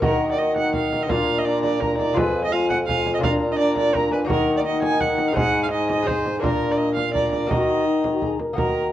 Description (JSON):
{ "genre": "classical, renaissance-style consort dance", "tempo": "169 BPM", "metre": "3/4", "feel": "straight", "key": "Eb harmonic minor", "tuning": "A4 = 440 Hz", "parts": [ { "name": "mellow tenor recorder", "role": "melody", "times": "0.0-8.9 s", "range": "Gb5 to Bb5", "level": "-31 LUFS", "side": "left 5 dB", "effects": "none" }, { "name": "warm viola", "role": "second line", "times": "0.0-8.9 s", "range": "Bb4 to Ab5", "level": "-24 LUFS", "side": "right 3 dB", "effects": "none" }, { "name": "lute", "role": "accompaniment", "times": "0.0-8.9 s", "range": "F2 to Eb5", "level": "-27 LUFS", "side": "left 4 dB", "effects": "none" }, { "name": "mellow trombone", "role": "accompaniment", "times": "0.0-8.9 s", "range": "D4 to Bb4", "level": "-26 LUFS", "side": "equal", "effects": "none" }, { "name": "warm bassoon", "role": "bass", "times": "0.0-8.9 s", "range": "F2 to Eb3", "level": "-25 LUFS", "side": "equal", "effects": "none" }, { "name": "frame drum", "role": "percussion", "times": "0.0-8.7 s", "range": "none", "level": "-28 LUFS", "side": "right 2 dB", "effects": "none" } ], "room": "moderate stone room reverb, RT60 1.1 s", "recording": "worn, warbling old tape, cassette tape, warbly pitch drift", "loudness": "-19 LUFS", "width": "side -12 dB against mid", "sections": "0.0-8.6 A section", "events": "none", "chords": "0.0 Ebm; 1.1 Bb; 2.2 Fdim; 3.2 Bb; 4.3 Ebm; 5.4 Ab; 6.4 Bb; 7.5 Ebm", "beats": "| 0.03 0.39 0.74 | 1.10 1.45 1.81 | 2.17 2.52 2.88 | 3.23 3.59 3.94 | 4.29 4.65 5.00 | 5.36 5.71 6.07 | 6.43 6.78 7.14 | 7.50 7.86 8.22 | 8.58" }